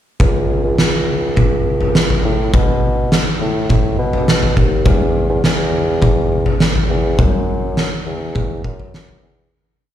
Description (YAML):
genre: dream pop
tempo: 103 BPM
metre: 4/4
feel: straight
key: unclear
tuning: A4 = 439 Hz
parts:
  - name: dark bassoon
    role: bass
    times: 0.2-9.5 s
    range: C#2 to B2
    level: -19 LUFS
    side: equal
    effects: none
  - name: oversized low-tuned drum kit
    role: drums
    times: 0.2-9.2 s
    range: kick drum, snare drum, toms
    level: -15 LUFS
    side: equal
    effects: none
room: light reverb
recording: played on a big sound system in a bare room, large studio reverb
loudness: -13 LUFS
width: side -11 dB against mid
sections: 0.2-9.5 verse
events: fade-out 7.2-9.5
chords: none